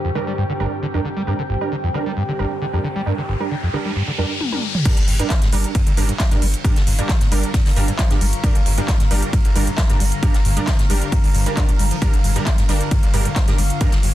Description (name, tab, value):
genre	driving peak-time techno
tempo	134 BPM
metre	4/4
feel	straight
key	G minor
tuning	A4 = 439 Hz
part	screaming distorted acid line	riff	0.0-14.1 s	G1 to G3	-25 LUFS	equal	distortion, wide subtle chorus, cassette tape, sidechain pumping
part	metallic inharmonic drone	drone	0.0-14.1 s	G2 to D3	-31 LUFS	left 4 dB	chorus, built-in reverb, sidechain pumping
part	deep dark ambient pad	texture	0.0-14.1 s	G4 to D6	-30 LUFS	equal	chorus, built-in reverb, sidechain pumping
part	rave stab	stabs	0.2-13.9 s	G3 to Bb4	-26 LUFS	right 4 dB	chorus, built-in reverb, sidechain pumping, dub echo
part	riser	sound effects	2.3-4.9 s	none	-28 LUFS	left 2 dB	none
part	techno drum kit	drums	4.4-14.1 s	crash cymbal, handclaps, hi-hat, ride cymbal, toms	-26 LUFS	equal	overdrive, sidechain pumping on toms, small room ambience, sidechain pumping on hats, sidechain pumping on cymbals
part	jazz brush drum kit	drums	4.8-14.1 s	ride cymbal, snare drum	-34 LUFS	right 2 dB	high-pass filter on cymbals, small room ambience, soft clipping on snare, high-pass filter on snare, high-pass filter on room
part	electronic kick drum	drums	4.9-13.9 s	none	-18 LUFS	equal	overdrive, small room ambience
part	saturated sub bass	bass	5.0-14.1 s	G1	-20 LUFS	equal	overdrive, sidechain pumping, low-pass filter
room	digital ambience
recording	dense, heavily limited modern master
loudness	-16 LUFS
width	side -14 dB against mid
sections	0.0-4.9 A section; 4.9-14.1 B section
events	riser 2.3-4.9; drum fill 4.4-4.9; drop 4.9-14.1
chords	0.0 Gm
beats	0.38 0.82 | 1.27 1.72 2.17 2.62 | 3.06 3.51 3.96 4.41 | 4.85 5.30 5.75 6.20 | 6.64 7.09 7.54 7.99 | 8.44 8.88 9.33 9.78 | 10.23 10.68 11.12 11.57 | 12.02 12.47 12.91 13.36 | 13.81